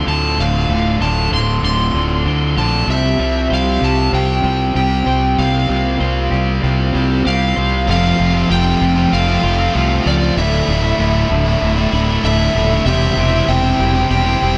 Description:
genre	rock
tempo	96 BPM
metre	4/4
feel	straight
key	unclear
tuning	A4 = 438 Hz
part	overdriven slide guitar	melody	0.0-14.6 s	D5 to C6	-22 LUFS	equal	tape echo
part	pedal harmonium	sustained chords	0.0-7.9 s	D3 to G4	-31 LUFS	equal	none
part	twelve-string electric guitar	arpeggios	0.0-14.6 s	D2 to C5	-24 LUFS	equal	tape echo
part	distorted electric guitar	riff	0.0-14.6 s	D2 to C5	-23 LUFS	equal	distortion, slapback echo
part	fuzz fingered electric bass	bass	0.0-14.6 s	D1 to D2	-20 LUFS	equal	overdrive
part	biting overdriven guitar	riff	7.9-14.6 s	D2 to C5	-24 LUFS	equal	slapback echo
room	moderate lush hall reverb, RT60 2.1 s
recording	big arena sound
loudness	-15 LUFS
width	mono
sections	0.0-7.9 A section; 7.9-14.6 B section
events	build-up 0.0-7.9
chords	0.0 Dm7; 2.9 Csus4; 7.9 F; 10.4 Dsus2; 12.9 C/E

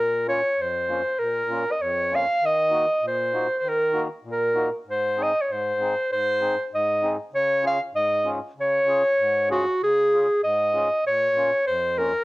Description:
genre	alpine folk, alpine dance band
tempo	97 BPM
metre	2/4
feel	straight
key	Db major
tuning	A4 = 440 Hz
part	clear clarinet	melody	0.0-12.2 s	Gb4 to F5	-21 LUFS	equal	cassette tape
part	mellow accordion	accompaniment	0.0-12.1 s	F2 to Ab4	-31 LUFS	left 2 dB	cassette tape
room	wet studio reverb, RT60 0.6 s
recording	home recording on cassette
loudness	-20 LUFS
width	side -20 dB against mid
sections	0.0-9.8 A section; 9.8-12.2 B section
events	none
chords	0.0 Bbm; 2.4 Ebm; 4.9 Ab; 7.3 Db; 11.1 Bbm

